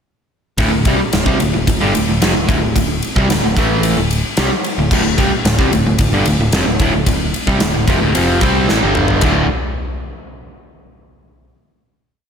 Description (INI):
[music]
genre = hard rock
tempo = 111 BPM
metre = 4/4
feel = straight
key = unclear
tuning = A4 = 440 Hz
[part]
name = overdriven semi-hollow guitar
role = riff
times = 0.6-9.5 s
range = D2 to C4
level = -16 LUFS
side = equal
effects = none
[part]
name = modern bright picked electric bass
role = bass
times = 0.6-9.5 s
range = D1 to C2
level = -20 LUFS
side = equal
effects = none
[part]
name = huge arena drum kit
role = drums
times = 0.6-9.4 s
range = crash cymbal, kick drum, ride cymbal, snare drum, toms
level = -17 LUFS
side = equal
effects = none
[sound]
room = moderate lush hall reverb, RT60 1.8 s, studio reverb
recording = big arena sound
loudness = -12 LUFS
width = side -7 dB against mid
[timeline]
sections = 0.6-9.2 riff; 9.2-11.4 final chord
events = drum fill 8.7-9.2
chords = 0.6 D5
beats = | 0.59 1.13 1.67 2.21 | 2.75 3.29 3.83 4.37 | 4.91 5.45 5.99 6.53 | 7.07 7.61 8.15 8.69 | 9.23